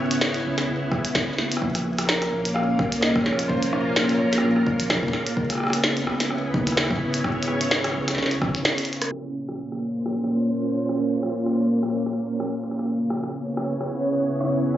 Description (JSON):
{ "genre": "IDM", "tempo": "128 BPM", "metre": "4/4", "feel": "swing 56% on 16ths", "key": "unclear", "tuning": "A4 = 440 Hz", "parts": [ { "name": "soft string machine", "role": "sustained chords", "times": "0.0-14.8 s", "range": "Bb2 to Db5", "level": "-24 LUFS", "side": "equal", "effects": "ensemble chorus" }, { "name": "round analog bass", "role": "bass", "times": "0.0-8.7 s", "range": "F1 to Eb2", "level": "-30 LUFS", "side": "equal", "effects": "none" }, { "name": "glitchy drum kit", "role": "drums", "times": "0.1-14.8 s", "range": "hi-hat, rim click, snare drum", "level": "-25 LUFS", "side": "equal", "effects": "ping-pong delay" }, { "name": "electronic kick drum", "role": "drums", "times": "0.9-8.5 s", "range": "none", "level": "-27 LUFS", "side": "equal", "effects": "none" }, { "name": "felt-muted upright piano", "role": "melody", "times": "2.1-4.9 s", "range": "Bb4 to F5", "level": "-29 LUFS", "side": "equal", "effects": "ping-pong delay" } ], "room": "wet lush hall reverb, RT60 1.8 s", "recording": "recorded on a phone in the room, club reverb, compression, low-pass filter, nothing above 7.6 kHz", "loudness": "-21 LUFS", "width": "side -12 dB against mid", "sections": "0.0-9.1 A section; 9.1-14.8 B section", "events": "drum fill 8.7-9.1; filter sweep 9.1-14.8", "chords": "0.0 Dbm7; 1.6 Bbm; 5.4 Dbm7; 9.1 Bbmadd9; 12.9 Dbm7" }